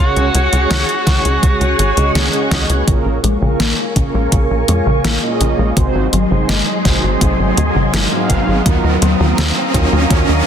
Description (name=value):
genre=synthwave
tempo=83 BPM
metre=4/4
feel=straight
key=unclear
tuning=A4 = 438 Hz
part: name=biting lead guitar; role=melody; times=0.0-2.1 s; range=Gb4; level=-20 LUFS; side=equal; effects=overdrive, tape echo
part: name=string machine, full ensemble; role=sustained chords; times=0.0-10.5 s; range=Gb3 to Eb6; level=-20 LUFS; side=equal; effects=ensemble chorus, sidechain pumping
part: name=mellow synth brass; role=stabs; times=0.0-10.4 s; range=Ab2 to F5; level=-21 LUFS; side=right 3 dB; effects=chorus, tape echo
part: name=tight sequencer bass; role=bass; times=0.0-10.4 s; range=Ab1 to F2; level=-16 LUFS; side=equal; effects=tube saturation
part: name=pop drum kit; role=drums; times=0.2-10.2 s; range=hi-hat, snare drum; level=-19 LUFS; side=left 1 dB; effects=overdrive
part: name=electronic kick drum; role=drums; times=1.1-10.2 s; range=none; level=-16 LUFS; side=equal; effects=overdrive
part: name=thumb-piano-like synth pluck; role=arpeggios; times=2.9-10.3 s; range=C3 to Bb3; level=-22 LUFS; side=left 5 dB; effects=chorus, cassette tape, tape echo
part: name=riser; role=sound effects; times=4.7-10.5 s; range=none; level=-22 LUFS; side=right 2 dB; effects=none
room=light reverb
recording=dense, heavily limited modern master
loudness=-12 LUFS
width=side -8 dB against mid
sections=0.0-2.9 A section; 2.9-10.5 B section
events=drum fill 2.5-2.9; filter sweep on string machine 2.9-10.5; filter sweep on synth arpeggio sound 2.9-10.5; riser 4.7-10.5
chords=0.0 Dbsus4; 2.9 Bbm7; 5.8 Ab7; 8.7 Ebmadd9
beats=0.71 1.43 2.15 | 2.88 3.60 4.32 5.04 | 5.77 6.49 7.21 7.94 | 8.66 9.38 10.11